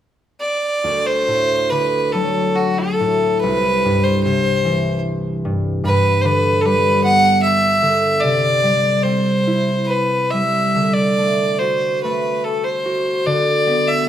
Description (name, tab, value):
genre	celtic folk, Celtic slow air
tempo	68-78 BPM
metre	3/4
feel	rubato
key	D mixolydian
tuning	A4 = 441 Hz
part	bright fiddle	melody	0.4-14.1 s	F#4 to F#5	-17 LUFS	equal	none
part	concert harp	accompaniment	0.8-14.1 s	C2 to F#4	-19 LUFS	equal	none
room	moderate recital hall reverb, RT60 1.4 s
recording	minimal, uncompressed stereo recording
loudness	-15 LUFS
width	side -10 dB against mid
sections	0.8-14.1 A section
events	none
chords	0.0 N.C.; 0.8 D; 3.4 C; 5.8 G; 8.2 Cadd9; 10.8 D; 13.3 Bmadd11/D